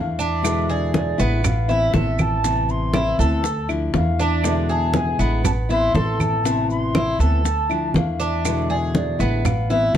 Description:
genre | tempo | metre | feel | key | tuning
latin, Cuban son and guajira | 120 BPM | 4/4 | straight | A harmonic minor | A4 = 441 Hz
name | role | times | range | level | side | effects
mellow hollow silver concert flute | melody | 0.0-10.0 s | D5 to C6 | -26 LUFS | right 1 dB | none
nylon-string guitar | accompaniment | 0.0-10.0 s | B2 to E4 | -25 LUFS | left 4 dB | none
upright bass | bass | 0.0-10.0 s | A1 to E2 | -22 LUFS | right 1 dB | none
Cuban tres | arpeggios | 0.2-10.0 s | B3 to A4 | -24 LUFS | equal | none
congas | percussion | 0.2-10.0 s | none | -24 LUFS | right 1 dB | none
maracas | percussion | 0.2-10.0 s | none | -34 LUFS | right 9 dB | none
bongos | percussion | 0.4-10.0 s | none | -28 LUFS | left 4 dB | none
claves | percussion | 0.4-9.7 s | none | -32 LUFS | right 7 dB | none
room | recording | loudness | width
light reverb | dark, warm production | -18 LUFS | side -10 dB against mid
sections
0.0-10.0 A section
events
none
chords
0.4 E7; 1.4 Amadd9; 3.4 Dmadd9; 4.4 E7; 5.4 Amadd9; 7.5 Dmadd9; 8.5 E7; 9.5 Amadd9

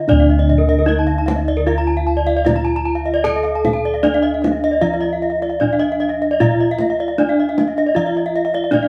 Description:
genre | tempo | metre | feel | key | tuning
Balinese gamelan | 76 BPM | 4/4 | straight | D pelog | A4 = 443 Hz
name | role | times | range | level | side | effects
gamelan-type bronze metallophone | melody | 0.0-8.9 s | D4 to A4-45c | -22 LUFS | equal | none
gamelan-type bronze metallophone | arpeggios | 0.0-8.8 s | Bb4-40c to A5-45c | -24 LUFS | equal | none
gamelan-type bossed gongs | bass | 0.0-8.9 s | D2 to A4-45c | -23 LUFS | equal | none
kendang | percussion | 0.1-8.9 s | none | -24 LUFS | equal | none
gamelan-type bronze metallophone | arpeggios | 0.2-8.9 s | D5 to Bb5-40c | -25 LUFS | equal | none
room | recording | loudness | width
moderate large studio reverb, RT60 1.0 s | band playing live in one room | -17 LUFS | mono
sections
0.0-8.9 A section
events
none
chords
none

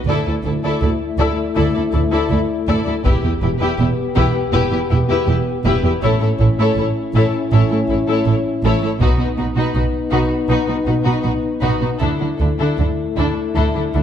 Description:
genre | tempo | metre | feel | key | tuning
cinematic, epic orchestral film score | 80 BPM | 4/4 | straight | unclear | A4 = 440 Hz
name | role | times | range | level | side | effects
warm symphonic violin section | melody | 0.1-14.0 s | A4 to D5 | -27 LUFS | left 5 dB | none
warm symphonic violin section | second line | 0.1-14.0 s | E4 to A4 | -25 LUFS | left 4 dB | none
warm symphonic viola section | accompaniment | 0.1-14.0 s | D4 to E4 | -25 LUFS | equal | none
mellow French horn section | sustained chords | 0.1-14.0 s | A3 to G4 | -22 LUFS | left 4 dB | none
dark chamber double bass section | bass | 0.1-14.0 s | E1 to D2 | -20 LUFS | right 2 dB | none
dark symphonic cello section | bass | 0.1-14.0 s | D2 to D3 | -21 LUFS | right 2 dB | none
taiko ensemble | drums | 3.1-4.5, 9.0-10.5 s | none | -20 LUFS | equal | none
reverse cymbal | sound effects | 13.9-14.0 s | none | barely audible | none | none
room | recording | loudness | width
moderate scoring stage reverb, RT60 1.7 s | dark, warm production | -15 LUFS | side -9 dB against mid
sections
0.0-14.0 A section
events
build-up 0.0-14.0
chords
0.1 Dsus2; 3.1 Em; 6.0 A; 9.0 B; 12.0 Dsus2

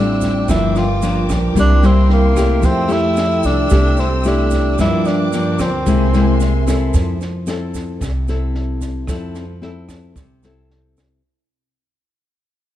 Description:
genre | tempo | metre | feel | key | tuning
bossa nova | 112 BPM | 4/4 | straight | F major | A4 = 440 Hz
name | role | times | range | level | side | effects
breathy tenor saxophone | melody | 0.0-6.4 s | Bb3 to F4 | -19 LUFS | right 1 dB | none
nylon-string guitar | accompaniment | 0.0-11.2 s | G2 to A4 | -19 LUFS | left 3 dB | none
vibraphone with soft mallets | accompaniment | 0.0-6.9 s | E4 to G#5 | -27 LUFS | right 5 dB | none
warm symphonic string section | sustained chords | 0.0-6.9 s | A4 to E6 | -29 LUFS | left 2 dB | none
upright bass | bass | 0.0-11.2 s | G1 to G2 | -18 LUFS | right 1 dB | none
compact cocktail drum kit | drums | 0.2-11.1 s | kick drum, rim click, snare drum | -24 LUFS | right 1 dB | none
tube shaker | percussion | 0.2-11.2 s | none | -38 LUFS | right 10 dB | none
room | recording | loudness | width
moderate scoring stage reverb, RT60 1.9 s | dark, warm production | -14 LUFS | side -12 dB against mid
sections
0.0-6.9 A section; 6.9-11.2 B section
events
fade-out 6.9-11.2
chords
0.5 Gm7; 1.6 C7; 2.6 Fmaj9; 4.8 Gm7; 5.9 Caug7; 6.9 Fmaj7

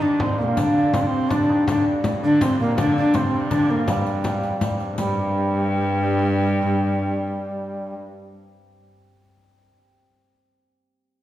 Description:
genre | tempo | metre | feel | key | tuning
medieval dance | 163 BPM | 3/4 | straight | G minor | A4 = 439 Hz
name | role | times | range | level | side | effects
bright reedy bass recorder | melody | 0.0-7.9 s | G3 to D4 | -21 LUFS | equal | none
hammered dulcimer | second line | 0.0-9.7 s | G3 to Eb4 | -28 LUFS | right 2 dB | none
rich viola da gamba | second line | 0.0-8.0 s | G2 to Eb3 | -25 LUFS | left 2 dB | none
dark hurdy-gurdy | drone | 0.0-8.0 s | G2 | -33 LUFS | left 1 dB | none
frame drum | percussion | 0.2-5.2 s | none | -27 LUFS | left 1 dB | none
riq | percussion | 0.6-5.2 s | none | -34 LUFS | left 3 dB | none
room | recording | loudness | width
wet recital hall reverb, RT60 1.7 s | heard from further back in the room | -18 LUFS | side -13 dB against mid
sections
0.0-5.0 A section; 5.0-7.2 B section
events
none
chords
none

